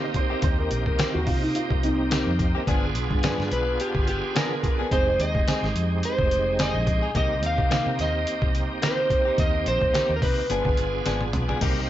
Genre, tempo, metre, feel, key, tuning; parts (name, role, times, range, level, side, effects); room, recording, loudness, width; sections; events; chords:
straight-eighth soul blues; 107 BPM; 4/4; swing 55% on 16ths; C minor; A4 = 440 Hz
warm upright piano; second line; 0.0-2.4 s; C4 to Eb5; -28 LUFS; equal
bright tonewheel organ; accompaniment; 0.0-11.9 s; Ab3 to Ab4; -29 LUFS; right 3 dB; overdrive, chorus vibrato, slow rotary speaker
direct-recorded clean electric guitar; stabs; 0.0-11.8 s; Eb3 to Ab4; -31 LUFS; left 4 dB
trip hop sampler-style drum kit; drums; 0.1-11.8 s; crash cymbal, hi-hat, kick drum, snare drum, toms; -26 LUFS; equal
vintage muted fingered electric bass; bass; 0.4-11.9 s; F1 to C3; -28 LUFS; equal
electric slide guitar; melody; 3.5-11.3 s; G4 to F5; -26 LUFS; equal
moderate stone room reverb, RT60 1.2 s; band playing live in one room, nothing above 7.7 kHz; -21 LUFS; side -12 dB against mid
0.0-11.6 A section
drum fill 11.1-11.6
0.0 Cm7; 2.7 G7b9; 4.9 Fm7; 7.2 Cm7; 10.5 G7b9